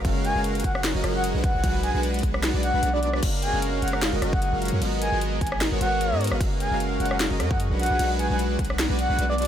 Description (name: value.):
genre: future bass.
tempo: 151 BPM.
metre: 4/4.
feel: swing 55% on 16ths, half-time.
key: F# major.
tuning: A4 = 440 Hz.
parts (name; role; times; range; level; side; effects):
ethereal airy pad; sustained chords; 0.0-9.5 s; F#3 to B4; -35 LUFS; equal; ensemble chorus, built-in reverb, sidechain pumping.
soft supersaw; riff; 0.0-9.5 s; G#3 to B5; -28 LUFS; right 1 dB; sidechain pumping.
long sustained 808-style bass; bass; 0.0-9.5 s; F#1 to G#2; -27 LUFS; equal; sidechain pumping.
electronic kick drum; drums; 0.0-8.7 s; none; -26 LUFS; equal; overdrive.
trap drum kit; drums; 0.0-9.5 s; crash cymbal, hi-hat, rim click, snare drum; -31 LUFS; left 1 dB; none.
breathy flute-like synth lead; melody; 0.2-9.5 s; D5 to G#5; -28 LUFS; equal; chorus, sidechain pumping, digital delay.
room: little or no reverb.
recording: none.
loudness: -22 LUFS.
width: side -10 dB against mid.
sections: 0.0-3.2 A section; 3.2-9.5 A section.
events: drop 0.0-3.2, 3.2-9.5; kick drops out 2.4-3.2.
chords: 0.0 F#maj9; 1.4 Bm6; 3.2 F#maj9; 4.8 G#m9; 6.4 F#maj9; 7.8 Bm6.